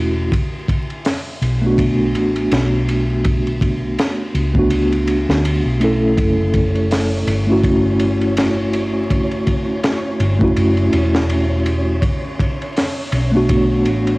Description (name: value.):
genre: trip hop.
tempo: 82 BPM.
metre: 4/4.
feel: swing 58% on 16ths.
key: B minor.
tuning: A4 = 440 Hz.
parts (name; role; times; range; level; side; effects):
mellow tine electric piano; accompaniment; 0.0-14.2 s; A3 to A4; -18 LUFS; equal; slow stereo tremolo, low-pass filter, cassette tape, tape echo.
hollow-body short-scale fingered electric bass; bass; 0.0-14.2 s; E1 to D2; -19 LUFS; equal; none.
crunchy breakbeat drum kit; drums; 0.3-14.2 s; hi-hat, kick drum, ride cymbal, snare drum; -20 LUFS; equal; cassette tape.
flickering grainy texture; texture; 6.6-14.2 s; C#4 to C#5; -29 LUFS; equal; built-in reverb, cassette tape.
room: light reverb, studio ambience.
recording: home recording on cassette, vinyl crackle.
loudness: -14 LUFS.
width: side -22 dB against mid.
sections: 0.0-14.2 A section.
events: filter sweep on tine electric piano 0.0-14.2.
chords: 0.3 Bm7; 6.2 F#m7; 12.0 Bm7.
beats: | 0.32 1.05 1.78 2.51 | 3.25 3.98 4.71 5.44 | 6.17 6.90 7.63 8.37 | 9.10 9.83 10.56 11.29 | 12.03 12.76 13.49.